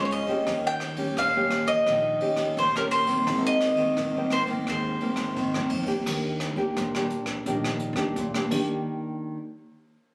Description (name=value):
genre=samba and choro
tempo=86 BPM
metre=4/4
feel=straight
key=Ab major, Eb major from 6.1 s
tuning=A4 = 440 Hz
part: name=mandolin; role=melody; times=0.0-5.7 s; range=Bb4 to G5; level=-27 LUFS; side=equal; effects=none
part: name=nylon-string guitar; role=accompaniment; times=0.0-9.4 s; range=Ab2 to G4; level=-31 LUFS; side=equal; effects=none
part: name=upright bass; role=bass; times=0.0-8.8 s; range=Ab1 to F2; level=-35 LUFS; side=equal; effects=none
part: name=jazz brush drum kit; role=drums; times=0.1-8.7 s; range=crash cymbal, hi-hat, kick drum, ride cymbal, rim click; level=-37 LUFS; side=equal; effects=none
room=moderate large studio reverb, RT60 1.2 s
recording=recorded on a phone in the room, club reverb, compression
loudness=-26 LUFS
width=mono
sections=0.0-6.1 A section; 6.1-8.9 B section; 8.9-10.1 C section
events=none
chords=0.5 Eb7; 3.3 Abadd9; 6.1 Ebmaj7; 8.9 N.C.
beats=| 0.47 1.17 1.87 2.57 | 3.27 3.97 4.67 5.37 | 6.07 6.77 7.47 8.16 | 8.86